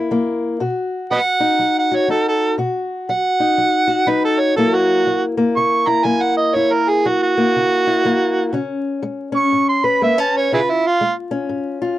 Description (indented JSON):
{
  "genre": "acoustic country blues, solo or duo",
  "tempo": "121 BPM",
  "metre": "4/4",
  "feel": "swing 61% on 8ths",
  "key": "F# mixolydian",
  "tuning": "A4 = 440 Hz",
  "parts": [
    { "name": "fingerpicked old ladder-braced acoustic guitar", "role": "accompaniment", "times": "0.0-12.0 s", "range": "F#2 to B4", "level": "-19 LUFS", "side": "left 3 dB", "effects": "none" },
    { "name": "overdriven harmonica", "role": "melody", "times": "1.1-11.1 s", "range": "E4 to C#6", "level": "-16 LUFS", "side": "right 3 dB", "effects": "none" }
  ],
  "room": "light reverb",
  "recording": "dry, close 1970s-style studio recording, vinyl crackle",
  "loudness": "-15 LUFS",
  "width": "side -14 dB against mid",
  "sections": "0.0-12.0 A section",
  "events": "none",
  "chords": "0.0 F#7; 0.6 B; 4.6 F#7; 8.5 C#7",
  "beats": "0.11 | 0.60 1.10 1.59 2.09 | 2.58 3.08 3.58 4.07 | 4.57 5.06 5.56 6.05 | 6.55 7.04 7.54 8.04 | 8.53 9.03 9.52 10.02 | 10.51 11.01 11.50"
}